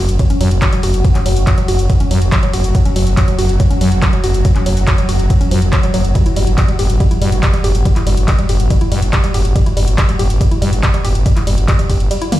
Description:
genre	driving peak-time techno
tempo	141 BPM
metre	4/4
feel	straight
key	unclear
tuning	A4 = 441 Hz
part	woody wave-folded pluck	riff	0.0-12.4 s	E#3 to G4	-22 LUFS	right 1 dB	chorus, cassette tape, sidechain pumping, ping-pong delay
part	growling FM bass	bass	0.0-12.1 s	F#1 to G2	-14 LUFS	equal	sidechain pumping
part	swarming drone	drone	0.0-12.4 s	F#3 to F#4	-23 LUFS	left 1 dB	built-in reverb, sidechain pumping
part	punchy analog drum machine	drums	0.1-12.4 s	handclaps, hi-hat, ride cymbal, toms	-23 LUFS	left 1 dB	sidechain pumping on hats, sidechain pumping on cymbals, sidechain pumping on toms
part	electronic kick drum	drums	0.2-12.0 s	none	-14 LUFS	equal	none
room	digital ambience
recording	played on a big sound system in a bare room, large studio reverb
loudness	-11 LUFS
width	side -14 dB against mid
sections	0.0-12.4 A section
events	none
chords	0.0 F#5; 6.2 N.C.

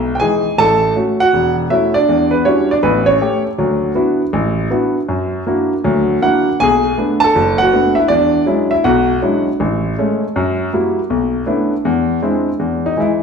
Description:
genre	solo jazz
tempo	160 BPM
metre	4/4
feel	swing 65% on 8ths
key	A major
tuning	A4 = 440 Hz
part	clear grand piano	solo	0.0-13.2 s	E1 to A5	-13 LUFS	equal	none
room	wet large studio reverb, RT60 1.3 s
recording	band playing live in one room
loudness	-13 LUFS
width	side -6 dB against mid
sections	0.6-12.6 A section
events	none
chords	0.0 Emaj7; 0.6 A6; 2.1 Em9; 2.8 A7; 3.6 D69; 5.1 F#aug7; 6.6 Bm7; 8.1 E13; 9.6 Amaj7; 10.3 F#7b9; 11.1 Bm11; 11.8 Eaug7; 12.6 Emaj7

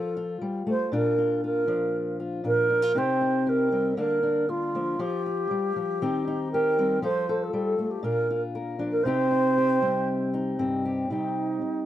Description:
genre	acoustic folk duo or small band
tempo	118 BPM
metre	4/4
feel	straight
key	C dorian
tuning	A4 = 441 Hz
part	wooden-headed alto flute	melody	0.0-11.9 s	Eb4 to C5	-25 LUFS	right 2 dB	none
part	fingerpicked old ladder-braced acoustic guitar	accompaniment	0.0-11.9 s	G2 to Bb4	-27 LUFS	left 2 dB	none
room	small room ambience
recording	dry, close 1970s-style studio recording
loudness	-23 LUFS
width	side -12 dB against mid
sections	0.0-11.1 A section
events	none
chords	0.0 F; 0.9 Bb; 3.0 Cm; 4.0 Bb/D; 5.0 Fsus2; 6.0 Cm/Eb; 7.0 F; 8.0 Bb; 9.1 Cm

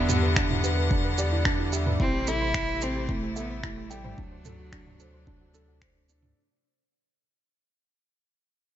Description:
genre	piano and strings electronica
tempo	110 BPM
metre	4/4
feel	straight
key	unclear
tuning	A4 = 439 Hz
part	dark cello	melody	0.0-5.8 s	F#3 to E4	-32 LUFS	right 1 dB	none
part	clear string quartet	sustained chords	0.0-6.3 s	C3 to F#5	-33 LUFS	left 2 dB	none
part	felt-muted upright piano	riff	0.0-6.4 s	D4 to G5	-33 LUFS	right 2 dB	ping-pong delay
part	warm sub bass	bass	0.0-6.3 s	A1 to E2	-29 LUFS	equal	tube saturation, sidechain pumping
part	soft round pluck	arpeggios	0.1-6.3 s	D4 to E5	-39 LUFS	right 4 dB	chorus, sidechain pumping, ping-pong delay
part	deep house drum kit	drums	0.1-6.3 s	finger snaps, shaker, toms	-30 LUFS	right 1 dB	none
part	electronic kick drum	drums	0.4-5.9 s	none	-30 LUFS	equal	none
room	light reverb, digital ambience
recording	nothing above 7.6 kHz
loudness	-24 LUFS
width	side -11 dB against mid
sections	0.0-6.4 A section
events	drop 0.0-6.4; fade-out 0.0-6.4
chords	0.0 Em7; 2.0 Am7; 4.2 D7

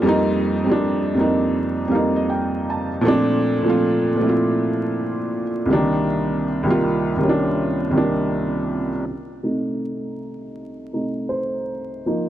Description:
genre	hip hop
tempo	80 BPM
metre	4/4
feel	swing 61% on 16ths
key	C dorian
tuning	A4 = 440 Hz
part	felt-muted upright piano	solo	0.0-12.3 s	C2 to A5	-18 LUFS	right 1 dB	low-pass filter
room	moderate plate reverb, RT60 2.8 s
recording	dark, warm production, vinyl crackle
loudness	-18 LUFS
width	side -12 dB against mid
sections	0.0-9.1 A section; 9.1-12.3 B section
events	felt piano fill 1.6-3.1; felt piano solo 9.1-12.3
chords	0.1 F7sus4; 3.1 Bbmaj7; 5.7 Cm7; 9.1 Cm6

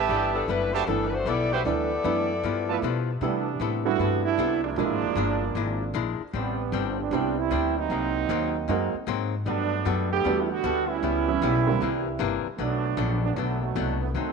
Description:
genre	jazz, big band swing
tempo	154 BPM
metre	4/4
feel	swing 65% on 8ths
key	G major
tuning	A4 = 441 Hz
part	warm trumpet section	stabs	0.0-2.8 s	F4 to A5	-29 LUFS	right 7 dB	none
part	upright bass	bass	0.0-14.3 s	F1 to C3	-30 LUFS	left 2 dB	none
part	warm saxophone section	melody	0.1-3.0 s	E3 to D5	-28 LUFS	left 3 dB	none
part	archtop guitar, miked and amplified	accompaniment	0.1-14.3 s	G2 to A4	-31 LUFS	left 15 dB	none
part	warm upright piano	accompaniment	0.9-11.8 s	D3 to Gb4	-30 LUFS	right 10 dB	none
part	clear trombone section	second line	3.2-14.3 s	B2 to G4	-27 LUFS	right 9 dB	none
room	moderate plate reverb, RT60 2.8 s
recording	1960s-style stereo with parts hard left and right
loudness	-23 LUFS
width	side -5 dB against mid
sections	0.0-3.2 A section; 3.2-14.3 B section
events	trombone section solo 3.2-14.3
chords	0.1 G69; 2.4 G13; 3.2 Cmaj13; 4.8 Bb7#11; 6.3 Am11; 7.9 Ab9; 9.5 Gmaj9; 11.0 C#m7b5; 11.8 C9; 12.6 Bm7

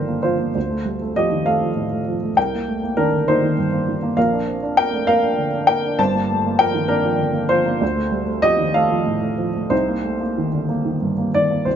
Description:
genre	neoclassical minimalist piano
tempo	66 BPM (dotted quarters)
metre	6/8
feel	rubato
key	C dorian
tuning	A4 = 440 Hz
part	dark upright piano	solo	0.0-11.8 s	G1 to A5	-17 LUFS	equal	none
room	light reverb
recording	nothing above 7.8 kHz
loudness	-17 LUFS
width	side -8 dB against mid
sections	0.0-11.7 A section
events	none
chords	0.0 Gm7; 0.6 Dm7; 2.4 Cm7; 4.2 Bbadd9; 6.0 Gm7; 7.8 Dm7; 9.7 Cm7

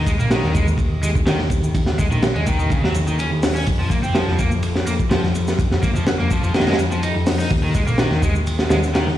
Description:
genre	breakbeat, breaks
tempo	125 BPM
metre	4/4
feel	straight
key	unclear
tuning	A4 = 440 Hz
part	crunchy overdriven guitar	riff	0.0-9.1 s	Db3 to Eb4	-24 LUFS	left 1 dB	vintage 12-bit sampler grit, digital delay
part	hollow-body short-scale picked electric bass	bass	0.0-9.2 s	F1 to F2	-21 LUFS	equal	none
part	crunchy breakbeat drum kit	drums	0.1-9.2 s	hi-hat, kick drum, ride cymbal, snare drum	-20 LUFS	equal	none
part	shaker	drums	0.1-9.1 s	none	-39 LUFS	right 1 dB	none
room	light reverb, studio ambience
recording	played on a big sound system in a bare room, large studio reverb, small room ambience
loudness	-16 LUFS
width	side -12 dB against mid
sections	0.0-9.2 A section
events	none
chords	0.0 Eb5; 3.7 N.C.; 7.5 Eb5

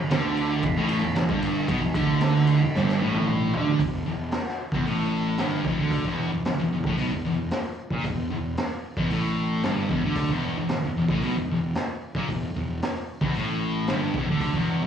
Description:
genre	garage rock duo or trio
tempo	113 BPM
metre	4/4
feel	straight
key	unclear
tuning	A4 = 441 Hz
part	thick fuzz guitar	riff	0.1-14.9 s	E2 to D3	-25 LUFS	equal	distortion
part	fuzz fingered electric bass	bass	0.1-14.9 s	E1 to D2	-29 LUFS	right 1 dB	overdrive
part	raw garage drum kit	drums	0.1-14.7 s	hi-hat, kick drum, ride cymbal, snare drum, toms	-29 LUFS	equal	none
room	light reverb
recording	live gig heard through the venue's PA, cassette tape, club reverb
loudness	-23 LUFS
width	side -8 dB against mid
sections	0.0-3.8 A section; 3.8-14.9 B section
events	drum fill 2.7-3.8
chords	0.0 E5

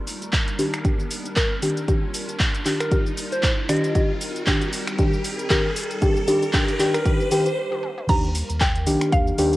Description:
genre	deep house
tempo	116 BPM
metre	4/4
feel	swing 57% on 16ths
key	unclear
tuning	A4 = 440 Hz
part	hollow soft pad	sustained chords	0.0-9.6 s	Eb3 to Bb4	-36 LUFS	equal	ensemble chorus, sidechain pumping, cassette tape
part	warm sub bass	bass	0.0-9.6 s	Bb1 to Eb2	-32 LUFS	equal	sidechain pumping, high-pass filter
part	riser	sound effects	0.0-7.6 s	none	-31 LUFS	equal	none
part	house drum kit	drums	0.1-9.6 s	crash cymbal, finger snaps, handclaps, hi-hat, shaker, toms	-27 LUFS	equal	high-pass filter on hats, high-pass filter on perc, high-pass filter on snare, high-pass filter on toms, high-pass filter on cymbals
part	electronic kick drum	drums	0.3-9.2 s	none	-22 LUFS	equal	none
part	deep mellow chord stab	stabs	0.6-9.6 s	Eb3 to G4	-23 LUFS	left 1 dB	chorus, sidechain pumping, cassette tape, analog delay
part	soft struck synth lead	melody	1.4-7.1 s	Bb4 to Eb5	-29 LUFS	equal	chorus, cassette tape, analog delay
part	mallet-like synth pluck	melody	8.1-9.6 s	F5 to Bb5	-26 LUFS	equal	chorus, cassette tape
room	moderate spring reverb, RT60 1.7 s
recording	home recording on cassette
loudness	-19 LUFS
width	side -17 dB against mid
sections	0.0-8.1 A section; 8.1-9.6 B section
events	build-up 0.0-8.1; riser 0.0-7.6; filter sweep on synth stab 0.0-8.1; stop 7.6-8.1; drum fill 7.7-8.1; drop 8.1-9.6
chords	0.0 Ebmaj7; 4.0 Cm7; 8.1 Ebmaj7

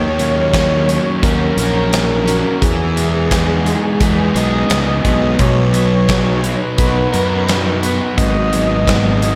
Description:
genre	rock, shoegaze and dream pop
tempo	86 BPM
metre	4/4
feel	straight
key	B major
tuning	A4 = 440 Hz
part	breathy flute-like synth lead	melody	0.0-9.4 s	G#4 to D#5	-22 LUFS	equal	chorus, tremolo, delay
part	electric guitar through a small old amp	arpeggios	0.0-9.4 s	F#3 to G#4	-26 LUFS	equal	analog chorus, delay
part	overdriven semi-hollow guitar	riff	0.0-9.4 s	G#2 to A#4	-23 LUFS	equal	reverse reverb
part	thick fuzz guitar	riff	0.0-9.4 s	G#2 to D#4	-23 LUFS	equal	distortion, lush chorus
part	fuzz fingered electric bass	bass	0.0-9.3 s	G#1 to F#2	-20 LUFS	equal	overdrive
part	big rock drum kit	drums	0.2-9.4 s	hi-hat, kick drum, snare drum	-22 LUFS	equal	none
room	wet lush hall reverb, RT60 2.2 s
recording	dreamy mix soaked in reverb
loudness	-15 LUFS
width	mono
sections	0.0-9.4 A section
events	none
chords	0.0 D#m7; 2.6 Emaj7; 5.4 Bmaj7; 8.2 G#m7

